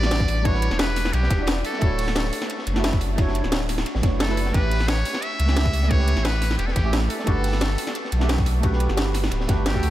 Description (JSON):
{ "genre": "liquid drum and bass", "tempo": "176 BPM", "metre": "4/4", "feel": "straight", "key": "unclear", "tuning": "A4 = 440 Hz", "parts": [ { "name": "trumpet with metal mute", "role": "melody", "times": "0.0-9.9 s", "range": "G4 to E5", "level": "-29 LUFS", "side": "equal", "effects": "tape echo" }, { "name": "deep mellow chord stab", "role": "accompaniment", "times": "0.0-9.9 s", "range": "G3 to E5", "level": "-28 LUFS", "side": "right 2 dB", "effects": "chorus, tape echo" }, { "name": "warm sub bass", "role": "bass", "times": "0.0-9.9 s", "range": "D1 to D2", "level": "-22 LUFS", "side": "equal", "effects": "none" }, { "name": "crunchy breakbeat drum kit", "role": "drums", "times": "0.0-9.9 s", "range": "hi-hat, ride cymbal, snare drum", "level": "-33 LUFS", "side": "equal", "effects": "high-pass filter on cymbals, small room ambience, high-pass filter on hats, high-pass filter on snare, high-pass filter on room" }, { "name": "drum and bass drum kit", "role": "drums", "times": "0.0-9.9 s", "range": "hi-hat, snare drum", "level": "-28 LUFS", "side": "equal", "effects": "overdrive, small room ambience" }, { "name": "electronic kick drum", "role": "drums", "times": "0.2-9.8 s", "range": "none", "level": "-22 LUFS", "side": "equal", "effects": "overdrive, small room ambience" } ], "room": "light reverb", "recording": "none", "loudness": "-20 LUFS", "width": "side -14 dB against mid", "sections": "0.0-9.9 A section", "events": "none", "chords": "0.0 Em7; 1.8 Dmaj9; 4.5 A9; 7.1 Gmaj7", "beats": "0.11 | 0.45 0.79 1.14 1.48 | 1.82 2.16 2.50 2.84 | 3.18 3.52 3.86 4.20 | 4.54 4.88 5.23 5.57 | 5.91 6.25 6.59 6.93 | 7.27 7.61 7.95 8.29 | 8.63 8.98 9.32 9.66" }